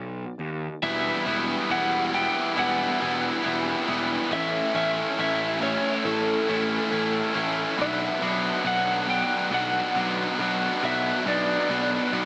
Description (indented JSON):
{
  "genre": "post-rock",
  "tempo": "69 BPM",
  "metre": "4/4",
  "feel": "straight",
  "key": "E dorian",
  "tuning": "A4 = 441 Hz",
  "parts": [
    { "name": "fuzz picked electric bass", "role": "bass", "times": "0.0-12.3 s", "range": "E1 to D#2", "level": "-32 LUFS", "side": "equal", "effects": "overdrive" },
    { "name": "clean lap steel guitar", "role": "melody", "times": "0.8-12.3 s", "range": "A4 to G5", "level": "-28 LUFS", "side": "equal", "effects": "diffuse ambient delay" },
    { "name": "distorted electric guitar", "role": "riff", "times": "0.8-12.3 s", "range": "A2 to F#4", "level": "-24 LUFS", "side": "equal", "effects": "overdrive" }
  ],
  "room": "wet lush hall reverb, RT60 2.6 s",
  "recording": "dreamy mix soaked in reverb, small speaker sound",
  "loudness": "-22 LUFS",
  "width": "side -24 dB against mid",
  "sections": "0.8-12.3 A section",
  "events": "none",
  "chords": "0.0 N.C.; 0.8 Emadd9; 4.3 A; 7.8 Bm",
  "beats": "| 0.83 1.70 2.57 3.44 | 4.31 5.18 6.05 6.92 | 7.79 8.65 9.52 10.39 | 11.26 12.13"
}